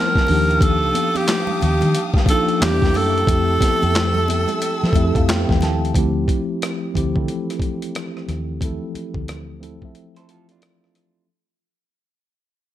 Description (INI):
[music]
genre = R&B, neo-soul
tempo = 90 BPM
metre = 4/4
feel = swing 62% on 16ths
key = D minor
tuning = A4 = 439 Hz
[part]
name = breathy tenor saxophone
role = melody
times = 0.0-5.3 s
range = G4 to Bb4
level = -20 LUFS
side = right 1 dB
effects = none
[part]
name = mellow tine electric piano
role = accompaniment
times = 0.0-11.3 s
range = E3 to A5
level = -24 LUFS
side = left 1 dB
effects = medium stereo tremolo
[part]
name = warm studio string section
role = sustained chords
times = 0.0-5.9 s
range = Bb3 to E6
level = -30 LUFS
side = left 1 dB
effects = none
[part]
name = boom bap sampler-style drum kit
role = drums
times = 0.2-11.1 s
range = handclaps, hi-hat, kick drum, rim click, snare drum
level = -21 LUFS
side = equal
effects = none
[part]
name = vintage muted fingered electric bass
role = bass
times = 0.3-9.8 s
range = D2 to F3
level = -21 LUFS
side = equal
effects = none
[part]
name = congas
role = percussion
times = 0.3-5.8 s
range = none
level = -31 LUFS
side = right 6 dB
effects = none
[part]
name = electric guitar through a small old amp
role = second line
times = 10.2-11.3 s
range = D4 to C5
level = -60 LUFS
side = right 6 dB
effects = none
[sound]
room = light reverb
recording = none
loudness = -16 LUFS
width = side -12 dB against mid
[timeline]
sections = 0.0-5.9 A section; 5.9-11.3 B section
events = tine electric piano fill 4.6-5.9; fade-out 5.9-11.3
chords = 0.3 Ebmaj9; 2.6 Em7b5; 3.3 Fmaj9; 5.9 Dm11